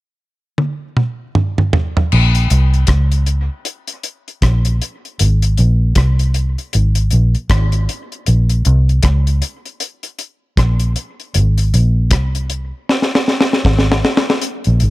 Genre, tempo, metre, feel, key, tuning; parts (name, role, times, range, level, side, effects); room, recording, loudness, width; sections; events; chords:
dub reggae; 78 BPM; 4/4; swing 60% on 16ths; Bb minor; A4 = 440 Hz
deep reggae drum kit; drums; 0.6-14.9 s; crash cymbal, hi-hat, kick drum, rim click, snare drum, toms; -16 LUFS; equal
vintage muted fingered electric bass; bass; 2.1-14.9 s; Ab1 to Db2; -12 LUFS; equal
little or no reverb; -13 LUFS; side -18 dB against mid
0.0-2.1 A section; 2.1-14.4 B section
drum fill 0.6-2.1, 12.9-14.4